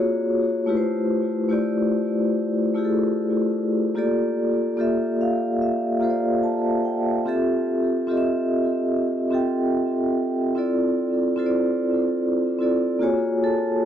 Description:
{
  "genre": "hip hop",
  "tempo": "73 BPM",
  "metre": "4/4",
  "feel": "swing 64% on 16ths",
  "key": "F major",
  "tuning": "A4 = 440 Hz",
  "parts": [
    { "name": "vibraphone with medium mallets", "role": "solo", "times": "0.0-13.9 s", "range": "A3 to A5", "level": "-20 LUFS", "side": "equal", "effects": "tape echo" }
  ],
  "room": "moderate small room reverb, RT60 0.5 s",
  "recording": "dark, warm production",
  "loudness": "-20 LUFS",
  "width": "side -9 dB against mid",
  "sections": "0.0-13.8 A section",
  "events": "none",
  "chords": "0.0 Gbmaj9; 0.7 Fmaj9; 4.0 Gm9; 7.3 Fmaj9; 10.5 Dm9; 13.0 Gbmaj9",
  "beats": "| 0.68 1.50 2.33 3.15 | 3.97 4.79 5.62 6.44 | 7.26 8.08 8.90 9.72 | 10.55 11.37 12.19 13.01 | 13.83"
}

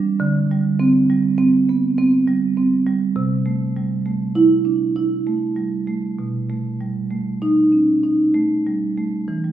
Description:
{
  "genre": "classical, contemporary piece for solo marimba",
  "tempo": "99 BPM",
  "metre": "5/4",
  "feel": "rubato",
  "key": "unclear",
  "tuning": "A4 = 437 Hz",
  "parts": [
    { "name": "marimba with soft mallets", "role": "solo", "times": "0.0-9.5 s", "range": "B2 to E4", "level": "-16 LUFS", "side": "right 2 dB", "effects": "none" }
  ],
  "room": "wet recital hall reverb, RT60 1.7 s",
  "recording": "recorded in a church or concert hall",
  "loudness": "-16 LUFS",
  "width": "side -11 dB against mid",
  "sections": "0.0-9.3 A section",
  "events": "none",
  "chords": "0.2 D7sus4; 3.2 C6; 6.2 Baug7",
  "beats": "| 0.20 0.79 1.38 1.97 2.56 | 3.16 3.76 4.35 4.96 5.56 | 6.17 6.80 7.42 8.04 8.67 | 9.29"
}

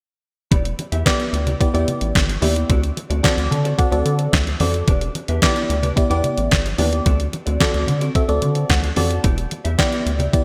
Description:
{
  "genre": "early-eighties boogie funk",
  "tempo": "110 BPM",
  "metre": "4/4",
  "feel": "straight",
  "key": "E minor",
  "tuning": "A4 = 436 Hz",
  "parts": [
    { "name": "mellow electric guitar", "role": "riff", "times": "0.5-10.4 s", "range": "B3 to E5", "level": "-32 LUFS", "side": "equal", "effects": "lush chorus" },
    { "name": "rubbery square bass", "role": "bass", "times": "0.5-10.4 s", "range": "E1 to D3", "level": "-23 LUFS", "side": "equal", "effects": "none" },
    { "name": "clean 12-bit digital drum machine", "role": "drums", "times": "0.5-10.4 s", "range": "handclaps, hi-hat, kick drum, snare drum", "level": "-22 LUFS", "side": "equal", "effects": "gated reverb" },
    { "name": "congas", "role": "percussion", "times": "0.5-10.4 s", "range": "none", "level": "-32 LUFS", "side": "equal", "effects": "none" },
    { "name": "FM electric piano with soft pad layer", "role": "accompaniment", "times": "1.1-10.4 s", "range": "B3 to A5", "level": "-25 LUFS", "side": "equal", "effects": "chorus, phaser" }
  ],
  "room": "moderate lush hall reverb, RT60 1.9 s, digital ambience",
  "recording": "bright 1980s-style digital production",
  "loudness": "-19 LUFS",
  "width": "mono",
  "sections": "0.5-10.4 A section",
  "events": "FM electric piano fill 3.2-4.9, 8.4-9.2",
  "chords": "0.5 Em7; 2.7 D7; 4.9 Em7; 7.1 D7; 9.2 Em7",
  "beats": "| 0.52 1.06 1.61 2.15 | 2.70 3.24 3.79 4.33 | 4.88 5.42 5.97 6.51 | 7.06 7.61 8.15 8.70 | 9.24 9.79 10.33"
}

